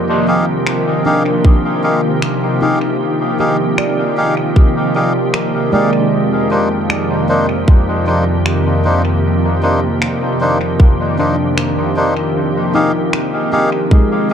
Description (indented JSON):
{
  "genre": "ambient dub",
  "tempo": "77 BPM",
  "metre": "4/4",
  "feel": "swing 56% on 16ths",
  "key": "F dorian",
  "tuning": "A4 = 440 Hz",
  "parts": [
    { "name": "soft additive organ-like pad", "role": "sustained chords", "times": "0.0-14.3 s", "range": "F2 to G4", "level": "-15 LUFS", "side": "equal", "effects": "ensemble chorus, built-in reverb" },
    { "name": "handpan", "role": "arpeggios", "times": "0.0-14.3 s", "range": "G3 to D5", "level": "-21 LUFS", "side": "right 1 dB", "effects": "dub echo" },
    { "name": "melodica", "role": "stabs", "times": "0.3-14.3 s", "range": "Bb3 to F5", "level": "-18 LUFS", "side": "left 1 dB", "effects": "dub echo" },
    { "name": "electronic finger snaps", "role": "drums", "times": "0.7-13.3 s", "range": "none", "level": "-24 LUFS", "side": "left 1 dB", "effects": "small room ambience, dub echo" },
    { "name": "electronic kick drum", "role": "drums", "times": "1.4-14.1 s", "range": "none", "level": "-8 LUFS", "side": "equal", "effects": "small room ambience" }
  ],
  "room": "moderate concert hall reverb, RT60 2.0 s",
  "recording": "dark, warm production",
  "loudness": "-12 LUFS",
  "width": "side -8 dB against mid",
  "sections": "0.0-14.3 A section",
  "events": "none",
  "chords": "0.0 Fm9; 6.1 Cm9/F; 12.4 Fm9"
}